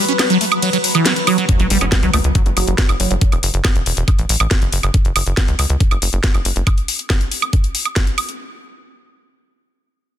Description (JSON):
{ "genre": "psychedelic trance", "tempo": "139 BPM", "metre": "4/4", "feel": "straight", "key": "F# phrygian", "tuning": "A4 = 440 Hz", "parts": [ { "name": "overtone-sweeping drone", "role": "sustained chords", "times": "0.0-1.5 s", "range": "F#3 to B4", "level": "-25 LUFS", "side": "left 1 dB", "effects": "chorus, built-in reverb, phaser, sidechain pumping" }, { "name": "liquid acid bass", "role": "riff", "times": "0.0-3.2 s", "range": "E3 to C#4", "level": "-18 LUFS", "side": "right 2 dB", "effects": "phaser, auto-pan, cassette tape, sidechain pumping, tape echo" }, { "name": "drum and bass drum kit", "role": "drums", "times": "0.1-8.4 s", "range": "hi-hat, ride cymbal, snare drum, woodblock", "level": "-19 LUFS", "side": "equal", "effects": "none" }, { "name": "electronic kick drum", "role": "drums", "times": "1.5-8.0 s", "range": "none", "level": "-16 LUFS", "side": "equal", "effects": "none" }, { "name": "impact", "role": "sound effects", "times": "1.5-3.2 s", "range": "none", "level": "-26 LUFS", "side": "equal", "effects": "none" }, { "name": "tight sequencer bass", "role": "bass", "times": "1.6-6.6 s", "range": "E1 to C#2", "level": "-18 LUFS", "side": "equal", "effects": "none" } ], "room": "little or no reverb", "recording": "dense, heavily limited modern master", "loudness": "-14 LUFS", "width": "side -10 dB against mid", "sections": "0.0-1.5 A section; 1.5-8.4 B section", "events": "break 0.0-1.5; drop 0.0-1.5; impact 1.5-3.2; filter sweep on acid bass 1.5-3.2", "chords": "0.0 F#5", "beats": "0.19 0.62 1.06 | 1.49 1.92 2.35 2.78 | 3.21 3.65 4.08 4.51 | 4.94 5.37 5.80 6.24 | 6.67 7.10 7.53 7.96" }